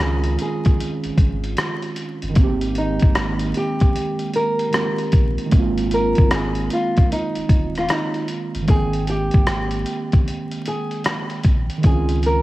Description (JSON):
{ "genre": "lo-fi hip hop", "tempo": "76 BPM", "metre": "4/4", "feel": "swing 66% on 16ths", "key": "Ab major", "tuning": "A4 = 440 Hz", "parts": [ { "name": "nylon-string guitar", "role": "melody", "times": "0.0-12.4 s", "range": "Eb4 to Bb4", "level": "-24 LUFS", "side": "left 1 dB", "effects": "cassette tape" }, { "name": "muted felt-like synth keys", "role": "accompaniment", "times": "0.0-12.4 s", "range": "Eb3 to G5", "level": "-24 LUFS", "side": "right 3 dB", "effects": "chorus, cassette tape" }, { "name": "warm sub bass", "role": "bass", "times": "0.0-12.4 s", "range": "Eb1 to Db2", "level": "-24 LUFS", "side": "equal", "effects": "none" }, { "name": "dusty soul sampler-style drum kit", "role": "drums", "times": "0.2-12.4 s", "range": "hi-hat, kick drum, rim click", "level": "-19 LUFS", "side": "equal", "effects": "none" } ], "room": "light reverb", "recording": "home recording on cassette, vinyl crackle", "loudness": "-17 LUFS", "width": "side -17 dB against mid", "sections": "0.0-8.7 A section; 8.7-12.4 B section", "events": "none", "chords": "0.0 Dbmaj9; 2.4 Abmaj9; 5.5 Ab6; 8.7 Abmaj9; 11.8 Dbmaj9" }